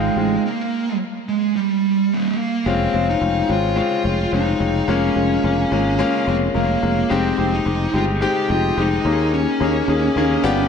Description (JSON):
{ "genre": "1980s-style pop", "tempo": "108 BPM", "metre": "4/4", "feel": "straight", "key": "unclear", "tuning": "A4 = 440 Hz", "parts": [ { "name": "fuzz lead guitar", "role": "melody", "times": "0.0-10.7 s", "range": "G3 to G4", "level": "-20 LUFS", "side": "right 2 dB", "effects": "distortion, ping-pong delay" }, { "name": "clear baby grand piano", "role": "accompaniment", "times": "0.0-10.7 s", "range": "Ab3 to Ab4", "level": "-20 LUFS", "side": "left 4 dB", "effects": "none" }, { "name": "sustaining fretless electric bass", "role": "bass", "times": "0.0-10.6 s", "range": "F1 to Eb2", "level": "-22 LUFS", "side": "equal", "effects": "none" } ], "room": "wet lush hall reverb, RT60 2.3 s", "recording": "dark, warm production", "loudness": "-17 LUFS", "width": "side -6 dB against mid", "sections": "0.0-2.7 A section; 2.7-10.7 B section", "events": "stop 0.4-2.7", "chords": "0.4 N.C.; 2.7 Dbmaj7/F; 4.9 Bbm7/F; 7.1 Abmaj7/F; 9.1 Eb7sus4" }